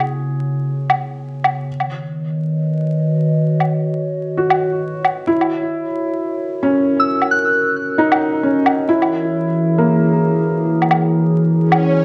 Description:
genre	future garage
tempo	133 BPM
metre	4/4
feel	swing 61% on 16ths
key	unclear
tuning	A4 = 440 Hz
part	felt-muted upright piano	accompaniment	0.0-12.0 s	A#3 to G#4	-21 LUFS	equal	digital delay
part	warbly tape-like pad	sustained chords	0.0-12.0 s	C#3 to D#5	-21 LUFS	equal	chorus, built-in reverb
part	woodblock	drums	0.0-11.8 s	none	-20 LUFS	equal	overdrive, studio reverb
part	soft synth bell	melody	7.0-7.8 s	E6 to F#6	-20 LUFS	equal	chorus, tape echo
part	swell	sound effects	11.7-12.0 s	none	-21 LUFS	equal	none
room	moderate digital room reverb, RT60 1.0 s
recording	dark, warm production, vinyl crackle, nothing above 10.5 kHz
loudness	-17 LUFS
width	mono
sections	0.0-12.0 A section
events	swell 11.7-12.0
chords	0.0 C#m7; 1.7 Badd9/D#; 5.3 F#; 8.9 E6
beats	0.31 0.76 1.21 | 1.67 2.12 2.57 3.02 | 3.47 3.92 4.37 4.82 | 5.28 5.73 6.18 6.63 | 7.08 7.53 7.98 8.43 | 8.88 9.34 9.79 10.24 | 10.69 11.14 11.59 12.04

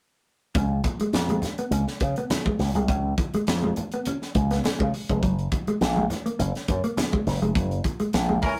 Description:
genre	funk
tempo	103 BPM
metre	4/4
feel	straight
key	Db mixolydian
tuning	A4 = 440 Hz
part	congas	percussion	0.5-8.6 s	none	-37 LUFS	equal	none
part	mellow electric guitar	riff	0.6-8.5 s	Gb3 to Db4	-31 LUFS	equal	none
part	slap bass with an envelope filter	bass	0.6-8.4 s	F1 to Db3	-27 LUFS	equal	none
part	crisp fusion drum kit	drums	0.6-8.6 s	hi-hat, kick drum, snare drum	-30 LUFS	equal	none
part	warm horn section	second line	8.4-8.5 s	Fb3 to Bb4	-27 LUFS	equal	none
room	moderate small room reverb, RT60 0.5 s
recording	rough rehearsal-room recording, tube saturation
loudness	-25 LUFS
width	mono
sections	0.6-8.6 A section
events	band accent 7.5-8.6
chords	0.6 Db; 5.2 Gbadd9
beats	| 0.55 1.14 1.72 2.30 | 2.88 3.47 4.05 4.63 | 5.22 5.80 6.38 6.97 | 7.55 8.13

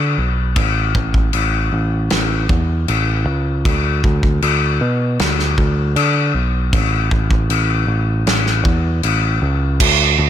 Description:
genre	rock, shoegaze and dream pop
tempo	78 BPM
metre	4/4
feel	straight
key	unclear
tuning	A4 = 436 Hz
part	picked electric bass	bass	0.0-10.3 s	A1 to D3	-17 LUFS	equal	none
part	loose indie drum kit	drums	0.6-10.0 s	crash cymbal, kick drum, snare drum	-17 LUFS	left 1 dB	none
room	little or no reverb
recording	none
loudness	-14 LUFS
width	side -10 dB against mid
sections	0.0-9.8 A section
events	none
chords	none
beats	| 0.57 1.34 2.11 2.88 | 3.65 4.42 5.19 5.96 | 6.72 7.49 8.26 9.03 | 9.80

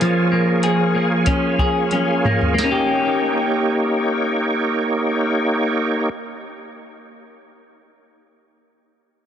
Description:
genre	dream pop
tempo	88-98 BPM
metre	4/4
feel	straight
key	Eb mixolydian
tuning	A4 = 439 Hz
part	percussive tonewheel organ	sustained chords	0.0-6.1 s	Bb3 to Db5	-20 LUFS	right 1 dB	overdrive, chorus vibrato, slow rotary speaker
part	semi-hollow electric guitar	arpeggios	0.0-6.9 s	F3 to Ab4	-19 LUFS	left 1 dB	wide subtle chorus, digital delay
part	soft vintage rhythm box	drums	0.0-2.7 s	hi-hat, kick drum, snare drum, toms	-22 LUFS	right 1 dB	none
room	moderate huge ambient reverb, RT60 4.5 s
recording	heavily compressed radio sound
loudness	-16 LUFS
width	side -9 dB against mid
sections	0.0-2.6 A section; 2.6-5.3 B section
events	slowing down 0.0-2.6; drum fill 1.9-2.6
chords	0.0 Bbm7; 2.6 Eb7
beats	| 0.01 0.63 1.26 1.92 | 2.59 3.28 3.96 4.65

